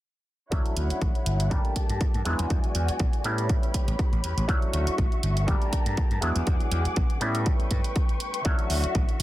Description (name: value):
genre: filtered disco house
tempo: 121 BPM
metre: 4/4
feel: swing 55% on 16ths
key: D major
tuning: A4 = 440 Hz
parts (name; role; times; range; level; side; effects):
- auto-wah clav; accompaniment; 0.5-9.2 s; F#3 to G4; -32 LUFS; equal; phaser, sidechain pumping, low-pass filter
- warm studio violin section; sustained chords; 0.5-9.2 s; E4 to D6; -34 LUFS; left 2 dB; sidechain pumping, low-pass filter
- slap bass; bass; 0.5-9.2 s; G1 to A2; -28 LUFS; equal; sidechain pumping, low-pass filter
- electronic hi-hat; drums; 0.5-9.2 s; none; -36 LUFS; right 3 dB; overdrive, sidechain pumping on hats
- electronic kick drum; drums; 0.5-9.1 s; none; -25 LUFS; equal; overdrive
room: little or no reverb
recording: dense, heavily limited modern master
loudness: -23 LUFS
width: side -15 dB against mid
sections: 0.5-9.2 A section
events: filter sweep 0.5-9.2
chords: 0.5 Dmaj9; 1.5 Gmadd9; 2.3 E9; 3.2 A9; 4.5 Dmaj9; 5.5 Gmadd9; 6.2 E9; 7.2 A9; 8.5 Dmaj9